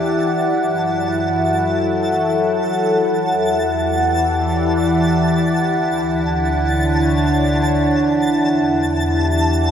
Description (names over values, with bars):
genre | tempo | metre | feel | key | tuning
ambient | free time | none | none | E dorian | A4 = 440 Hz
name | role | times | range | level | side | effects
evolving wavetable pad | sustained chords | 0.0-9.7 s | D3 to F#5 | -16 LUFS | equal | chorus, built-in reverb
deep rumbling drone | bass | 0.0-9.7 s | D2 to F#2 | -24 LUFS | equal | built-in reverb
organ-like drone | drone | 0.0-9.7 s | E3 to E4 | -28 LUFS | left 1 dB | none
twinkling granular texture | texture | 0.0-9.7 s | A5 | -26 LUFS | left 1 dB | built-in reverb, ensemble chorus
room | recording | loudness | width
wet lush hall reverb, RT60 2.8 s | dreamy mix soaked in reverb | -15 LUFS | side -8 dB against mid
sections
0.0-9.7 A section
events
fade-in on synth drone 0.0-9.7; fade-in on synth texture 0.0-9.7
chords
0.3 F#m7; 2.9 Em7; 5.6 Dmaj7; 8.2 Em7